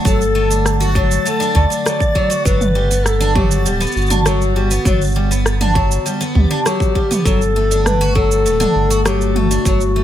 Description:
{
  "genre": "folktronica",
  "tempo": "100 BPM",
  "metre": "4/4",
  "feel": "straight",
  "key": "G major",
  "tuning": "A4 = 442 Hz",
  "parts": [
    { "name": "warbly tape-like pad", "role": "sustained chords", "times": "0.0-10.0 s", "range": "D3 to F#5", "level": "-24 LUFS", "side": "left 1 dB", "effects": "chorus, built-in reverb" },
    { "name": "picked twelve-string acoustic guitar", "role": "arpeggios", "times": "0.0-10.0 s", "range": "F#3 to F#4", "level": "-20 LUFS", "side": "left 1 dB", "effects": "ping-pong delay" },
    { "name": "backwards swelling texture", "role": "texture", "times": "0.0-10.0 s", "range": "A6", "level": "-29 LUFS", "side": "left 1 dB", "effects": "built-in reverb" },
    { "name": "breathy clarinet", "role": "melody", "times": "0.1-10.0 s", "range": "F#4 to D5", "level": "-20 LUFS", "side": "left 2 dB", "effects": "ping-pong delay" },
    { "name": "warm sub bass", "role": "bass", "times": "0.1-10.0 s", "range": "D1 to D2", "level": "-17 LUFS", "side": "equal", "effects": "none" },
    { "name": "electronic kick drum", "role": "drums", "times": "0.1-9.8 s", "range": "none", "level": "-17 LUFS", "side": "equal", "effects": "none" },
    { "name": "minimal click drum kit", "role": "drums", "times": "0.1-9.9 s", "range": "rim click, shaker, toms", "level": "-22 LUFS", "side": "right 2 dB", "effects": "none" }
  ],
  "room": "little or no reverb",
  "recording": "none",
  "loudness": "-13 LUFS",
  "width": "side -11 dB against mid",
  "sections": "0.0-10.0 A section",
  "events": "none",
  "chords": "0.0 D; 2.5 Gmaj7; 7.3 D"
}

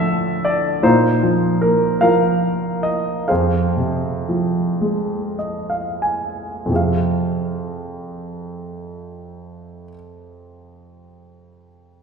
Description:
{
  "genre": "classical, lyrical solo piano",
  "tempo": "28-52 BPM (dotted quarters)",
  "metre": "6/8",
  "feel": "rubato",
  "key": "F minor",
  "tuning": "A4 = 440 Hz",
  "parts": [
    { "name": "clear concert grand piano", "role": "solo", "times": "0.0-12.0 s", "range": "D2 to Ab5", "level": "-17 LUFS", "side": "right 1 dB", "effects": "none" }
  ],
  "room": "wet scoring stage reverb, RT60 2.0 s",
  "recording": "heard from further back in the room",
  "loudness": "-17 LUFS",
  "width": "side -5 dB against mid",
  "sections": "0.0-6.7 A section; 6.7-10.8 B section",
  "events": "slowing down 0.8-6.7; grand piano fill 4.8-6.7",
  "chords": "0.0 Dm; 0.8 Bbsus4; 3.3 Fm"
}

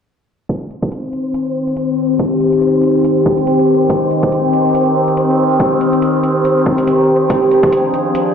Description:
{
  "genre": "deep dubstep",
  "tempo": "141 BPM",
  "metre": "4/4",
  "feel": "swing 56% on 16ths, half-time",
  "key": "C minor",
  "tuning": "A4 = 440 Hz",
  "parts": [
    { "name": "overtone-sweeping drone", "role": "sustained chords", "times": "1.0-8.3 s", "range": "Eb3 to Ab4", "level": "-13 LUFS", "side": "equal", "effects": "chorus, built-in reverb" },
    { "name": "electronic hi-hat", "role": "drums", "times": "0.5-8.2 s", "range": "none", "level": "-38 LUFS", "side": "equal", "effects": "overdrive" },
    { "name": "electronic kick drum", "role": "drums", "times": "0.5-7.7 s", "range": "none", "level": "-18 LUFS", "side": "right 1 dB", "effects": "overdrive, high-pass filter on kick" },
    { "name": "wind-like tuned noise texture", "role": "texture", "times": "0.9-8.3 s", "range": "C4 to C5", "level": "-19 LUFS", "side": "left 1 dB", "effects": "built-in reverb" }
  ],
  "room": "moderate digital room reverb, RT60 1.0 s, digital ambience",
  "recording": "played on a big sound system in a bare room, large studio reverb, low-pass filter",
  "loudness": "-12 LUFS",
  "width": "side -7 dB against mid",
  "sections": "0.5-8.3 A section",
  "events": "filter sweep 0.5-8.3",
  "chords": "0.5 Cm; 7.3 Ddim"
}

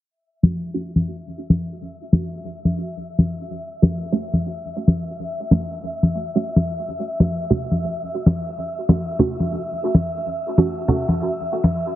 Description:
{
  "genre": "deep dubstep",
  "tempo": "142 BPM",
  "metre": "4/4",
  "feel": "swing 56% on 16ths, half-time",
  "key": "unclear",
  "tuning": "A4 = 440 Hz",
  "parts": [
    { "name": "wind-like tuned noise texture", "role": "texture", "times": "1.4-12.0 s", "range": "E5", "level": "-30 LUFS", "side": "equal", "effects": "built-in reverb" },
    { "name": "filtered dub chord stab", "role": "stabs", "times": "0.4-11.0 s", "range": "A3 to F#4", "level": "-25 LUFS", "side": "right 3 dB", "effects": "phaser, wide subtle chorus, dub echo" },
    { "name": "congas", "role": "percussion", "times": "0.4-11.7 s", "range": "none", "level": "-19 LUFS", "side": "left 1 dB", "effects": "dub echo" }
  ],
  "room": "moderate spring reverb, RT60 1.7 s, studio reverb",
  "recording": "heavily compressed radio sound, low-pass filter, nothing above 7.8 kHz",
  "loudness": "-19 LUFS",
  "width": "side -13 dB against mid",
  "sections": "0.1-12.0 A section",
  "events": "filter sweep on synth stab 0.1-12.0; filter sweep 0.1-12.0",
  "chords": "none"
}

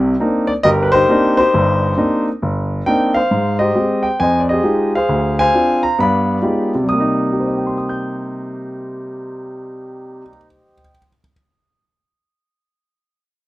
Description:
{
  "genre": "solo jazz",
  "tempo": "134 BPM",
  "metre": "4/4",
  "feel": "swing 65% on 8ths",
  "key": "C minor",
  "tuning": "A4 = 436 Hz",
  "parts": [
    { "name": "warm grand piano", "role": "solo", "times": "0.0-11.3 s", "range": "G1 to G6", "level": "-14 LUFS", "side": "equal", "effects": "none" }
  ],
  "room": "light reverb",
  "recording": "close, detailed microphones",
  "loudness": "-14 LUFS",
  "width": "side -17 dB against mid",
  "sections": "0.0-3.3 A section; 3.3-6.9 B section; 6.9-10.4 C section",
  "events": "none",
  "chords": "0.0 Cm9; 3.3 Abmaj7; 4.2 Fm9; 5.1 Dm7b5; 6.0 G7b9b13; 6.9 Cm7"
}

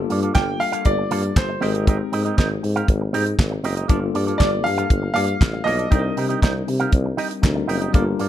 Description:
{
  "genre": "disco",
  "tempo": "118 BPM",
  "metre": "4/4",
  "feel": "straight",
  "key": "G minor",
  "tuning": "A4 = 441 Hz",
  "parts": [
    { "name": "bell-like tine electric piano", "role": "accompaniment", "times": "0.0-8.3 s", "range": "G3 to Bb4", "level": "-27 LUFS", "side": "left 6 dB", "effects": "fast stereo tremolo" },
    { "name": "warm tuba", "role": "bass", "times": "0.0-8.3 s", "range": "F#1 to C3", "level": "-24 LUFS", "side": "equal", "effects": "none" },
    { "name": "electric guitar with an envelope filter", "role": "accompaniment", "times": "0.1-8.3 s", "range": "Bb3 to F5", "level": "-27 LUFS", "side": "right 5 dB", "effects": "none" },
    { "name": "damped 70s drum kit", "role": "drums", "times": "0.1-8.3 s", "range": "handclaps, hi-hat, kick drum, snare drum", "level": "-20 LUFS", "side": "equal", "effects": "none" },
    { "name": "clear baby grand piano", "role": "melody", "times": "0.3-6.1 s", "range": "Bb4 to G5", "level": "-23 LUFS", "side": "equal", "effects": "none" }
  ],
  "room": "light reverb",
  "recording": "dark, warm production",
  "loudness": "-18 LUFS",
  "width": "side -12 dB against mid",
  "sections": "0.0-8.3 A section",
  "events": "none",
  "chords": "0.0 Gm9; 1.6 Abmaj9; 3.9 Gm9; 5.9 Cm7"
}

